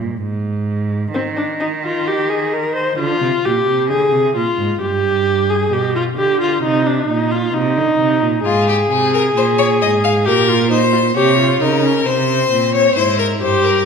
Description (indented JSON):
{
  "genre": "classical, baroque-style fugue for string quartet",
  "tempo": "66 BPM",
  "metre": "4/4",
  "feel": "straight",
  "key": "unclear",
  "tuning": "A4 = 440 Hz",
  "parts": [
    { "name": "rich cello", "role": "bass", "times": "0.0-13.9 s", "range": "G2 to Eb3", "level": "-19 LUFS", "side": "right 4 dB", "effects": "none" },
    { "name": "dark viola", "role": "accompaniment", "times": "1.1-13.9 s", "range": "C4 to C5", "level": "-16 LUFS", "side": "left 1 dB", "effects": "none" },
    { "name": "clear violin", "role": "second line", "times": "8.4-13.9 s", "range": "F4 to F5", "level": "-16 LUFS", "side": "left 5 dB", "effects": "none" }
  ],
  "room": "wet recital hall reverb, RT60 1.4 s",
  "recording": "recorded in a church or concert hall",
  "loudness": "-14 LUFS",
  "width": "side -6 dB against mid",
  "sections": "0.0-13.9 A section",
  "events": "none",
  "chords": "0.0 N.C.; 1.1 Cm/Eb; 3.0 Dm7b5; 4.8 G; 6.6 Cm; 8.4 Fm/Ab (rootless); 10.3 Gm7b5/Bb; 12.1 C"
}